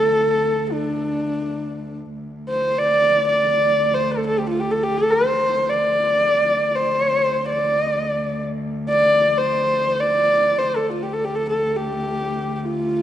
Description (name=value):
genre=mongolian traditional, Mongolian folk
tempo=free time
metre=none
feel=none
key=D yu mode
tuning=A4 = 440 Hz
part: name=dark horsehead fiddle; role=melody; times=0.0-13.0 s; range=D4 to D5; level=-18 LUFS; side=equal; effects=none
part: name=muted cello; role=drone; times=0.0-13.0 s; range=D2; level=-29 LUFS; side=equal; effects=none
room=moderate scoring stage reverb, RT60 2.0 s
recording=nothing above 10.3 kHz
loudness=-18 LUFS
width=side -11 dB against mid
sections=0.0-2.2 A section; 2.2-13.0 A section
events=none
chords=none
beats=free time